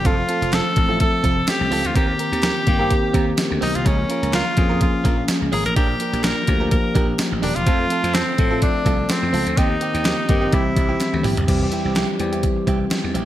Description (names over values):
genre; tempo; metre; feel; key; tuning
1980s-style pop; 126 BPM; 4/4; swing 55% on 16ths; F major; A4 = 440 Hz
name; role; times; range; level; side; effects
bright tenor saxophone; melody; 0.0-11.2 s; C4 to Bb4; -23 LUFS; equal; none
tine electric piano; accompaniment; 0.0-13.2 s; Eb3 to Bb4; -23 LUFS; left 2 dB; lush chorus
direct-recorded clean electric guitar; riff; 0.0-13.2 s; Bb3 to Bb4; -28 LUFS; right 7 dB; wide subtle chorus
slap bass; bass; 0.0-13.2 s; Eb1 to A2; -25 LUFS; equal; none
clean 12-bit digital drum machine; drums; 0.1-13.2 s; crash cymbal, hi-hat, kick drum, snare drum, tambourine, toms; -21 LUFS; equal; overdrive, gated reverb
group handclap; percussion; 0.5-13.0 s; none; -39 LUFS; right 4 dB; none
room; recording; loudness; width
moderate plate reverb, RT60 1.4 s; bright 1980s-style digital production; -17 LUFS; side -13 dB against mid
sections
0.0-11.5 A section; 11.5-13.2 B section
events
drum fill 11.0-11.5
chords
0.1 F; 2.0 Eb6; 3.9 Db6; 5.8 Bb6; 7.7 F; 9.6 Eb6; 10.5 C